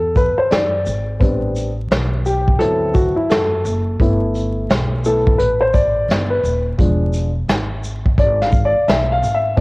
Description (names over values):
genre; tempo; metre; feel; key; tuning
hip hop, jazz-hop; 86 BPM; 4/4; swing 62% on 16ths; unclear; A4 = 440 Hz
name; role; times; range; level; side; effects
dark grand piano; accompaniment; 0.0-9.6 s; F3 to F5; -17 LUFS; left 1 dB; none
upright bass; bass; 0.0-9.6 s; D#1 to F#2; -21 LUFS; equal; none
vintage brush drum kit; drums; 0.2-9.6 s; hi-hat, kick drum, shaker, snare drum; -18 LUFS; equal; vintage 12-bit sampler grit, cassette tape
room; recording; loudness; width
light reverb, studio reverb; home recording on cassette, vinyl crackle; -14 LUFS; side -24 dB against mid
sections
0.0-9.6 A section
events
grand piano solo 0.0-9.6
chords
0.0 E7(no3); 1.2 Am11; 2.6 D13; 4.0 G69; 6.8 E7b9